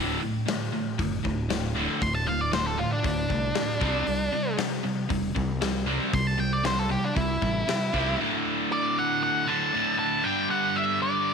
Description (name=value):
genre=classic rock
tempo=117 BPM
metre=4/4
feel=straight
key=D mixolydian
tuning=A4 = 440 Hz
part: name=distorted electric guitar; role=riff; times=0.0-11.3 s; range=D2 to C4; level=-27 LUFS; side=right 1 dB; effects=distortion
part: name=growling fingered electric bass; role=bass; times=0.0-8.1 s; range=D1 to C2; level=-31 LUFS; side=right 1 dB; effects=overdrive
part: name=big rock drum kit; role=drums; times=0.5-8.1 s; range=hi-hat, kick drum, snare drum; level=-32 LUFS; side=left 4 dB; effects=none
part: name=octave-fuzz lead guitar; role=melody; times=2.0-11.3 s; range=D4 to C6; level=-27 LUFS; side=equal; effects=distortion, slapback echo
room=light reverb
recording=1960s-style stereo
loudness=-24 LUFS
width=side -6 dB against mid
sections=0.0-8.2 A section; 8.2-11.3 B section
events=lead electric guitar solo 0.0-8.2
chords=0.0 D5; 3.8 C; 8.2 D5; 10.2 G5